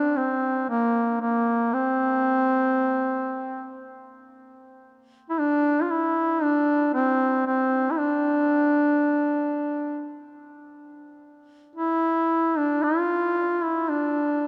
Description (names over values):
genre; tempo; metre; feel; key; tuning
caucasian folk; 57 BPM; 3/4; rubato; unclear; A4 = 439 Hz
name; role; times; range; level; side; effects
warm duduk; solo; 0.0-14.5 s; Bb3 to F4; -24 LUFS; equal; none
room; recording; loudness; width
moderate cathedral reverb, RT60 6.1 s; none; -24 LUFS; mono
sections
0.0-14.5 A section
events
none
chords
none